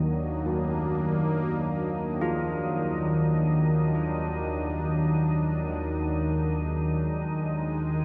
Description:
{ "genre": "dark ambient drone", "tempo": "free time", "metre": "none", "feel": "none", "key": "Eb harmonic minor", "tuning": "A4 = 442 Hz", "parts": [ { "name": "sweeping resonant pad", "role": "sustained chords", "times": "0.0-8.0 s", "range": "Eb3 to D4", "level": "-34 LUFS", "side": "equal", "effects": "chorus" }, { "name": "organ-like drone", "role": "drone", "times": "0.0-8.0 s", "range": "Eb2 to Eb3", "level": "-29 LUFS", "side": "equal", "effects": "ensemble chorus, built-in reverb" }, { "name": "old church bells", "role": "arpeggios", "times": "0.5-8.0 s", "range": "Gb3 to F4", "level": "-37 LUFS", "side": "equal", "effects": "delay" } ], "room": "wet huge ambient reverb, RT60 7.5 s", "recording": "none", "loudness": "-27 LUFS", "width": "mono", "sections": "0.0-8.0 A section", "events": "fade-out on analog synth pad 0.0-8.0", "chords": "0.0 Ebm" }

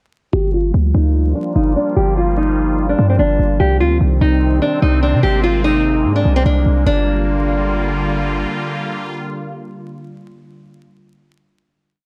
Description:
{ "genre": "hip hop, trap", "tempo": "147 BPM", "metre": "4/4", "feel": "half-time", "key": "G phrygian", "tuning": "A4 = 438 Hz", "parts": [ { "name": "nylon-string guitar", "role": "melody", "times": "0.3-8.0 s", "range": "C4 to G4", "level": "-20 LUFS", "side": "equal", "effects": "low-pass filter" }, { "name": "sweeping resonant pad", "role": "sustained chords", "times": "0.3-10.9 s", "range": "C3 to F4", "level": "-25 LUFS", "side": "equal", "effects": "chorus, low-pass filter" }, { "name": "warm 808-style bass", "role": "bass", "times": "0.3-8.5 s", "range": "G1 to C3", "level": "-18 LUFS", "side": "equal", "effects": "none" } ], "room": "small room ambience", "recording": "vinyl crackle", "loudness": "-16 LUFS", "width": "mono", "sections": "0.3-6.9 breakdown; 6.9-10.1 final chord", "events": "filter sweep 0.3-6.9", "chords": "0.3 Gm7; 3.6 Cm; 5.2 Abadd9; 6.9 Gm7" }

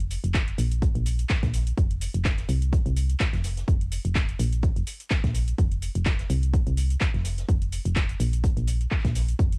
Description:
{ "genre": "piano house", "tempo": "126 BPM", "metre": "4/4", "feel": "swing 55% on 16ths", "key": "unclear", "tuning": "A4 = 442 Hz", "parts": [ { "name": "solid FM bass", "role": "bass", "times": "0.0-9.6 s", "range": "F1 to C2", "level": "-25 LUFS", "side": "equal", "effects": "sidechain pumping" }, { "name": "house drum kit", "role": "drums", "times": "0.0-9.6 s", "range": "handclaps, hi-hat, shaker", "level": "-33 LUFS", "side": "equal", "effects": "none" }, { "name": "compact cocktail drum kit", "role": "drums", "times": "0.1-9.5 s", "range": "hi-hat, snare drum", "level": "-44 LUFS", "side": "left 1 dB", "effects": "sidechain pumping on hats, high-pass filter on hats, high-pass filter on snare, high-pass filter on room" }, { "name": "electronic kick drum", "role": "drums", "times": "0.3-9.5 s", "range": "none", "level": "-24 LUFS", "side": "equal", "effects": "none" } ], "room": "little or no reverb", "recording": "home recording on cassette", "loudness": "-22 LUFS", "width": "side -37 dB against mid", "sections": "0.0-9.6 A section", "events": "none", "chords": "none" }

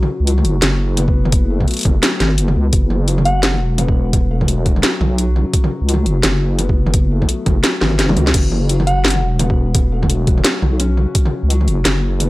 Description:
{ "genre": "half-time drum and bass", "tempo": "171 BPM", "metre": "4/4", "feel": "swing 60% on 16ths, half-time", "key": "F# minor", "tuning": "A4 = 438 Hz", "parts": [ { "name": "felt-muted upright piano", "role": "arpeggios", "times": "0.0-12.3 s", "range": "C#3 to F#4", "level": "-24 LUFS", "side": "left 4 dB", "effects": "vintage 12-bit sampler grit, tape echo" }, { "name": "drum and bass drum kit", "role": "drums", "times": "0.0-12.3 s", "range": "crash cymbal, hi-hat, snare drum, toms", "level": "-18 LUFS", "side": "equal", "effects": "none" }, { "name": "deep soft wobble bass", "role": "bass", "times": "0.2-12.3 s", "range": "E1 to C#2", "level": "-16 LUFS", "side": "equal", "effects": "chorus" }, { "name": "electronic kick drum", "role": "drums", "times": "1.1-11.2 s", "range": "none", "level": "-15 LUFS", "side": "equal", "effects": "overdrive" }, { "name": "soft synth bell", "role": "melody", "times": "3.3-3.5, 8.9-9.1 s", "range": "F#5", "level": "-23 LUFS", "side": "right 1 dB", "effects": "chorus, tape echo" } ], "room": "little or no reverb", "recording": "dry, gritty hardware recording", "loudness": "-13 LUFS", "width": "side -19 dB against mid", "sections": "0.0-12.3 A section", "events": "drum fill 7.8-8.3", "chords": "0.0 F#m" }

